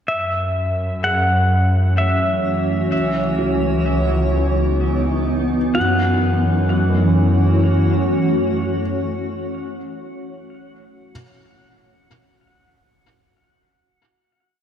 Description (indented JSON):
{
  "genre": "ambient",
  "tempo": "64 BPM",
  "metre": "3/4",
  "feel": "straight",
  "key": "F# dorian",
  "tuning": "A4 = 440 Hz",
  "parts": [
    { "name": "pedal steel guitar", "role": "melody", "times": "0.1-8.8 s", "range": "E5 to F#5", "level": "-23 LUFS", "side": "equal", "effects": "tape echo" },
    { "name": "granular cloud pad", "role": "sustained chords", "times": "1.8-9.4 s", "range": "E3 to C#5", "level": "-20 LUFS", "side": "equal", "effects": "built-in reverb, wide subtle chorus" },
    { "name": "rich studio double bass section", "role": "bass", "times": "0.1-8.8 s", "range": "C#2 to F#2", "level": "-19 LUFS", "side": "equal", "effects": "none" },
    { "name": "analog drone", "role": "drone", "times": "0.9-8.8 s", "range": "F#3 to C#4", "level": "-31 LUFS", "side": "right 1 dB", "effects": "none" },
    { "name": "felt-muted upright piano", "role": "arpeggios", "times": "1.0-11.1 s", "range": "F#4 to G#4", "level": "-31 LUFS", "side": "right 1 dB", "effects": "analog chorus, tape echo" }
  ],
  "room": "wet lush hall reverb, RT60 3.0 s",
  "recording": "dreamy mix soaked in reverb, cassette tape",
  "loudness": "-16 LUFS",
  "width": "side -9 dB against mid",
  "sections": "0.1-5.8 A section; 5.8-8.6 final chord",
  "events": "fade-in on ambient pad 0.1-5.8; fade-in on felt piano 0.1-5.8",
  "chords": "0.1 F#m7; 2.9 C#m11; 5.8 F#m7"
}